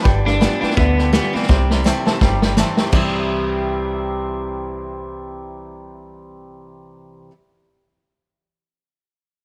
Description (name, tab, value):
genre	rockabilly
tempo	167 BPM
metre	4/4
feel	swing 58% on 8ths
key	C major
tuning	A4 = 440 Hz
part	honky-tonk upright piano	accompaniment	0.0-7.3 s	B4 to A5	-30 LUFS	equal	none
part	picked steel-string acoustic guitar	accompaniment	0.0-7.3 s	G2 to F4	-28 LUFS	equal	none
part	twangy electric guitar	riff	0.0-7.3 s	G2 to E4	-30 LUFS	equal	none
part	upright bass	bass	0.1-7.3 s	G1 to D2	-24 LUFS	equal	none
part	vintage drum kit	drums	0.1-3.0 s	crash cymbal, hi-hat, kick drum, snare drum	-21 LUFS	equal	none
part	electric guitar at the edge of break-up	melody	0.3-1.7 s	B3 to D4	-24 LUFS	equal	tape echo
room	light reverb, small room reverb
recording	none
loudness	-18 LUFS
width	mono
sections	0.0-2.9 A section; 2.9-5.8 B section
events	drum fill 1.5-2.9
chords	0.1 G7; 1.5 C